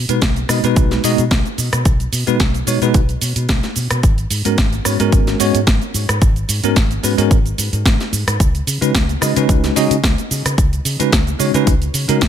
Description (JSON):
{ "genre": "nu-disco, nu disco", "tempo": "110 BPM", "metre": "4/4", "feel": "swing 54% on 16ths", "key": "unclear", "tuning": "A4 = 440 Hz", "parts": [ { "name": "fingered electric bass with an envelope filter", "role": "bass", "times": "0.0-12.3 s", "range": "G#1 to C#3", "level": "-20 LUFS", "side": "equal", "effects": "tube saturation" }, { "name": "bell-like tine electric piano", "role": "accompaniment", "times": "0.1-12.2 s", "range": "G#3 to D#5", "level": "-18 LUFS", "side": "equal", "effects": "fast stereo tremolo, sidechain pumping, ping-pong delay" }, { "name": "house drum kit", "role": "drums", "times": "0.1-12.3 s", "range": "hi-hat, rim click, shaker, snare drum, toms", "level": "-20 LUFS", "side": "right 1 dB", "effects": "none" }, { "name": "electronic kick drum", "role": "drums", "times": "0.2-12.3 s", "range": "none", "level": "-15 LUFS", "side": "equal", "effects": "none" } ], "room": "digital ambience", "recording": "none", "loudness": "-13 LUFS", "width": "side -9 dB against mid", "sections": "0.0-12.3 A section", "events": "none", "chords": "0.0 B6; 4.0 G#m11; 8.4 C#9sus4" }